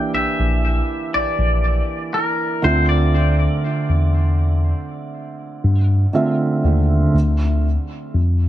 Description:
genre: contemporary R&B.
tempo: 60 BPM.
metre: 4/4.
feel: straight.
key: D minor.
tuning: A4 = 440 Hz.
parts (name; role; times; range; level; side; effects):
twangy electric guitar; melody; 0.0-5.8 s; Bb4 to G5; -22 LUFS; left 1 dB; tape echo.
felt-muted upright piano; accompaniment; 0.0-7.2 s; D3 to E5; -21 LUFS; right 2 dB; tape echo.
mellow tine electric piano; bass; 0.1-8.5 s; Bb1 to G2; -17 LUFS; equal; medium stereo tremolo.
room: light reverb, small room ambience.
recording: echo-heavy mix, nothing above 10.4 kHz.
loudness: -16 LUFS.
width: side -13 dB against mid.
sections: 0.0-7.1 A section; 7.1-8.5 B section.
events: felt piano solo 7.1-8.5.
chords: 0.0 Em7b5; 2.6 Dm9; 7.1 Dm.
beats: 0.14 1.14 2.14 | 3.14 4.14 5.14 6.14 | 7.14 8.14.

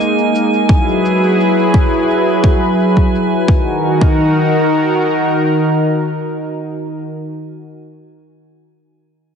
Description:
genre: sunset chillout.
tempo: 86 BPM.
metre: 4/4.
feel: straight.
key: unclear.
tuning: A4 = 441 Hz.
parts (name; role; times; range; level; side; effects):
lush unison pad; sustained chords; 0.0-7.0 s; Eb3 to Cb5; -13 LUFS; equal; chorus.
cabasa; drums; 0.0-3.5 s; none; -43 LUFS; left 5 dB; none.
drifting glass-harmonics texture; texture; 0.0-3.5 s; Ab5; -23 LUFS; right 4 dB; chorus, built-in reverb.
electronic kick drum; drums; 0.7-4.2 s; none; -12 LUFS; equal; overdrive, studio reverb.
room: moderate plate reverb, RT60 2.7 s.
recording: heavily compressed radio sound, multiband compression, nothing above 10.6 kHz.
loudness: -11 LUFS.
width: side -7 dB against mid.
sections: 0.0-3.5 A section; 3.5-6.3 B section.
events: none.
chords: 0.0 Bb7sus4; 0.7 Gb9sus4; 3.5 Ebm.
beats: | 0.69 1.39 2.09 2.79 | 3.48 4.18 4.88 5.58.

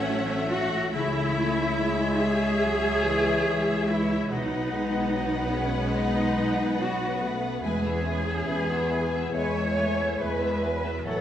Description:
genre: cinematic.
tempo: 71 BPM.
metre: 4/4.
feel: rubato.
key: E major.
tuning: A4 = 441 Hz.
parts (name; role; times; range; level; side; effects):
rich studio violin section; melody; 0.0-11.2 s; E5 to G#5; -38 LUFS; left 3 dB; none.
mellow clarinet; second line; 0.0-11.2 s; B4 to E5; -38 LUFS; left 2 dB; none.
mellow hollow concert flute; second line; 0.0-11.1 s; E5 to F#5; -36 LUFS; left 1 dB; none.
rich studio violin section; second line; 0.0-11.2 s; G#4 to E5; -37 LUFS; left 3 dB; none.
rich studio viola section; accompaniment; 0.0-11.2 s; F#3 to B3; -32 LUFS; right 2 dB; none.
mellow French horn section; sustained chords; 0.0-11.2 s; E3 to G#4; -31 LUFS; left 2 dB; none.
concert harp; arpeggios; 0.0-11.2 s; A2 to B4; -36 LUFS; left 3 dB; none.
rich studio double bass section; bass; 0.0-11.2 s; A1 to E2; -34 LUFS; right 2 dB; none.
warm studio cello section; bass; 0.0-11.2 s; C#4 to C#5; -28 LUFS; equal; none.
room: wet recital hall reverb, RT60 1.7 s.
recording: heard from further back in the room.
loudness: -23 LUFS.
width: side -10 dB against mid.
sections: 0.0-11.2 A section.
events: none.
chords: 0.0 A6; 0.9 C#m; 4.3 B; 7.6 E.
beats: 0.08 | 0.92 1.77 2.62 3.46 | 4.30 5.13 5.96 6.79 | 7.62 8.47 9.34 10.19 | 11.04.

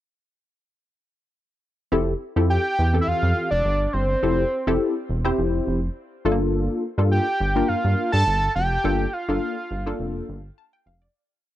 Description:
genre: early-eighties boogie funk.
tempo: 104 BPM.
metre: 4/4.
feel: straight.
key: F major.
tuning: A4 = 440 Hz.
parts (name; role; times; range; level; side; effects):
funky polysynth comp; accompaniment; 1.9-11.3 s; E3 to A5; -24 LUFS; left 2 dB; chorus.
rubbery square bass; bass; 1.9-11.1 s; E1 to G2; -23 LUFS; equal; none.
fat analog lead; melody; 2.5-10.3 s; C5 to A5; -24 LUFS; right 1 dB; none.
room: digital ambience.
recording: dry, close 1970s-style studio recording.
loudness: -20 LUFS.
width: side -13 dB against mid.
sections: 1.9-11.2 verse.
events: fade-out 8.8-11.2.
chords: 1.9 Fmaj7; 6.2 Gm7.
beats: | 1.92 2.50 3.08 3.65 | 4.23 4.81 5.38 5.96 | 6.54 7.11 7.69 8.27 | 8.84 9.42 10.00 10.57.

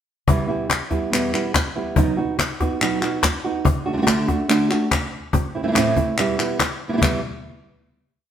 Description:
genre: flamenco.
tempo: 142 BPM.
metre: 4/4.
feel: straight.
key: E minor.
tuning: A4 = 440 Hz.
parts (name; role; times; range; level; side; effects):
nylon-string guitar; accompaniment; 0.3-7.2 s; E2 to F#4; -21 LUFS; right 2 dB; none.
cajon; percussion; 0.3-7.1 s; none; -22 LUFS; left 2 dB; none.
palmas hand claps; percussion; 0.7-7.1 s; none; -24 LUFS; left 2 dB; none.
room: wet stone room reverb, RT60 1.0 s.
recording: band playing live in one room.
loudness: -18 LUFS.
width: side -9 dB against mid.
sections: 0.3-7.0 groove; 7.0-8.3 final chord.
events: none.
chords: 0.3 Em; 2.0 B; 3.7 D; 5.3 Am; 6.2 Em.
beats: | 0.28 0.70 1.13 1.55 | 1.97 2.40 2.82 3.24 | 3.66 4.08 4.50 4.92 | 5.34 5.76 6.18 6.60 | 7.02.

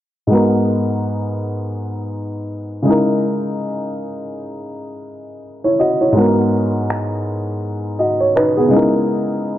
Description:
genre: contemporary R&B.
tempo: 82 BPM.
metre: 4/4.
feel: swing 58% on 16ths.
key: unclear.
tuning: A4 = 440 Hz.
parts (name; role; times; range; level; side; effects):
warm baby grand piano; accompaniment; 0.3-9.6 s; G#2 to D#5; -16 LUFS; equal; none.
electronic finger snaps; drums; 6.9-8.6 s; none; -30 LUFS; right 1 dB; none.
room: light reverb, studio ambience.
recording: low-pass filter.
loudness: -15 LUFS.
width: side -12 dB against mid.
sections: 0.3-9.6 A section.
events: filter sweep 0.3-9.6; break 9.1-9.6.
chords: 0.3 G#m9; 2.9 C#m69; 6.2 G#m9; 8.7 C#m69.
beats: | 0.31 1.04 1.77 2.50 | 3.23 3.97 4.70 5.43 | 6.16 6.89 7.62 8.36 | 9.09.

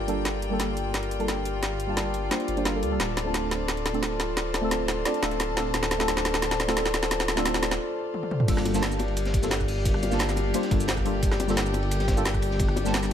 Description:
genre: liquid drum and bass.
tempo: 175 BPM.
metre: 4/4.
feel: straight.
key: G minor.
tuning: A4 = 440 Hz.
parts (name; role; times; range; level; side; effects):
rich chamber string section; sustained chords; 0.0-13.1 s; Bb3 to A5; -34 LUFS; left 3 dB; sidechain pumping.
vibraphone with soft mallets; arpeggios; 0.0-13.1 s; F4 to F5; -32 LUFS; left 4 dB; low-pass filter, digital delay.
dark detuned saw bass; bass; 0.0-13.1 s; D1 to D2; -30 LUFS; equal; none.
deep mellow chord stab; accompaniment; 0.1-13.1 s; G3 to A5; -30 LUFS; right 1 dB; chorus, dub echo.
drum and bass drum kit; drums; 0.1-13.1 s; crash cymbal, hi-hat, rim click, shaker, snare drum, toms; -28 LUFS; equal; overdrive.
crunchy breakbeat drum kit; drums; 8.5-13.1 s; hi-hat, ride cymbal, snare drum; -36 LUFS; equal; high-pass filter on hats, high-pass filter on cymbals, high-pass filter on snare, high-pass filter on room.
electronic kick drum; drums; 8.5-12.7 s; none; -28 LUFS; equal; none.
bongos; percussion; 8.7-12.8 s; none; -35 LUFS; left 6 dB; none.
room: light reverb, studio ambience.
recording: none.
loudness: -23 LUFS.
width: side -9 dB against mid.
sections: 0.0-8.5 A section; 8.5-13.1 B section.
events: build-up 0.0-8.5; drum fill 0.0-7.8, 8.1-8.5; break 7.8-8.5; drop 8.5-13.1.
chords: 0.0 Gm7; 3.0 Dm7; 8.5 Gm7.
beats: | 0.26 0.60 0.94 1.28 | 1.63 1.97 2.31 2.65 | 3.00 3.34 3.68 4.03 | 4.37 4.71 5.05 5.40 | 5.74 6.08 6.43 6.77 | 7.11 7.46 7.80 8.14 | 8.48 8.83 9.17 9.51 | 9.86 10.20 10.54 10.88 | 11.23 11.57 11.91 12.26 | 12.60 12.94.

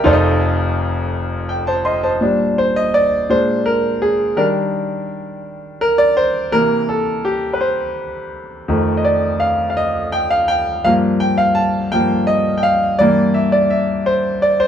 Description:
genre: gospel.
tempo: 56 BPM (dotted quarters).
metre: 6/8.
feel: straight.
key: Bb major.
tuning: A4 = 439 Hz.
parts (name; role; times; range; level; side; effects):
bright grand piano; solo; 0.0-14.7 s; F1 to C6; -14 LUFS; equal; none.
room: moderate stone room reverb, RT60 1.0 s.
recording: band playing live in one room.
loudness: -14 LUFS.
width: side -9 dB against mid.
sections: 0.0-2.2 A section; 2.2-14.7 B section.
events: grand piano solo 2.2-14.7.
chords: 0.1 F7; 2.2 Bb6; 3.3 Bb7; 4.4 Ebmaj7; 6.5 C7; 8.7 F7; 10.8 Gm7; 13.0 Gm6.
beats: | 0.05 1.13 | 2.21 3.29 | 4.37 5.45 | 6.53 7.61 | 8.69 9.77 | 10.85 11.93 | 13.01 14.09.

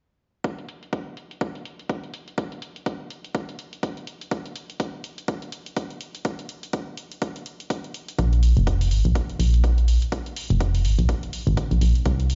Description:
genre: piano house.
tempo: 124 BPM.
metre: 4/4.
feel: swing 58% on 16ths.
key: unclear.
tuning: A4 = 439 Hz.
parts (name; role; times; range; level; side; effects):
electronic hi-hat; drums; 0.4-12.3 s; none; -41 LUFS; equal; overdrive, low-pass filter on hats.
electronic kick drum; drums; 0.4-12.2 s; none; -31 LUFS; equal; overdrive, high-pass filter on kick.
solid FM bass; bass; 8.2-12.3 s; F1 to C2; -21 LUFS; equal; sidechain pumping.
room: little or no reverb.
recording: played on a big sound system in a bare room, large studio reverb, nothing above 7.6 kHz.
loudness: -25 LUFS.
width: mono.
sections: 0.4-12.3 A section.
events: none.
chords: none.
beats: | 0.44 0.93 1.41 1.90 | 2.38 2.86 3.35 3.83 | 4.32 4.80 5.28 5.77 | 6.25 6.73 7.22 7.70 | 8.19 8.67 9.15 9.64 | 10.12 10.61 11.09 11.57 | 12.06.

